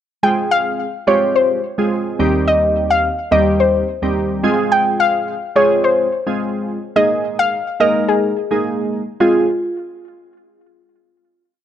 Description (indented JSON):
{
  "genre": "pop",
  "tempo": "107 BPM",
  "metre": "4/4",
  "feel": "straight",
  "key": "F minor",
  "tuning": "A4 = 440 Hz",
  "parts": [
    { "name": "soft round pluck", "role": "melody", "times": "0.2-9.5 s", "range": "F4 to G5", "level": "-16 LUFS", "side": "left 1 dB", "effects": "chorus" },
    { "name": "glassy digital keys", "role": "accompaniment", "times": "0.2-9.5 s", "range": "Eb2 to Bb4", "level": "-18 LUFS", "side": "right 1 dB", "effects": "chorus" }
  ],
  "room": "digital ambience",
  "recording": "dry, close 1970s-style studio recording",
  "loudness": "-14 LUFS",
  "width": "side -10 dB against mid",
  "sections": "0.2-9.2 verse; 9.2-11.4 final chord",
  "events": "none",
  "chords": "0.2 Fm; 2.2 Cm/Eb; 4.4 Fm; 7.0 Ebsus4; 9.2 Fm",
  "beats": "| 0.23 0.79 1.35 1.91 | 2.47 3.04 3.60 4.16 | 4.72 5.28 5.84 6.40 | 6.96 7.52 8.08 8.64 | 9.20"
}